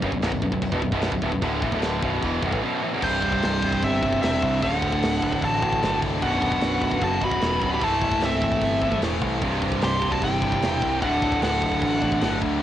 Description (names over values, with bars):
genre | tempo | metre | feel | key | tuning
heavy metal | 150 BPM | 4/4 | straight | B phrygian | A4 = 440 Hz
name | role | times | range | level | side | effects
dark analog pad | sustained chords | 0.0-12.6 s | D3 to C5 | -36 LUFS | left 1 dB | none
high-gain distorted guitar | riff | 0.0-12.6 s | B1 to A3 | -27 LUFS | right 7 dB | distortion, cassette tape
tight distorted guitar | riff | 0.0-12.6 s | B1 to A3 | -28 LUFS | left 9 dB | distortion, cassette tape
growling picked electric bass | bass | 0.0-12.6 s | B0 to D2 | -29 LUFS | equal | overdrive
tight metal drum kit | drums | 0.0-12.5 s | china cymbal, crash cymbal, kick drum, snare drum | -30 LUFS | equal | cassette tape
nasal lead guitar with a parked wah | melody | 3.0-12.4 s | C5 to C6 | -26 LUFS | equal | overdrive, cassette tape
high-gain lead guitar | second line | 3.0-12.4 s | G3 to G4 | -30 LUFS | right 2 dB | distortion, cassette tape
room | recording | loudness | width
light reverb, small room ambience | home recording on cassette, nothing above 10.3 kHz | -21 LUFS | side -11 dB against mid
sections
0.0-3.0 A section; 3.0-12.6 B section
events
none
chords
0.0 Bm; 3.0 C; 4.6 D; 6.2 Bm; 7.8 Am/C; 9.4 C; 11.0 D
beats
0.22 0.62 1.02 | 1.42 1.82 2.23 2.62 | 3.02 3.42 3.83 4.23 | 4.62 5.03 5.42 5.83 | 6.22 6.62 7.02 7.42 | 7.82 8.22 8.62 9.02 | 9.42 9.82 10.22 10.62 | 11.02 11.42 11.82 12.22 | 12.62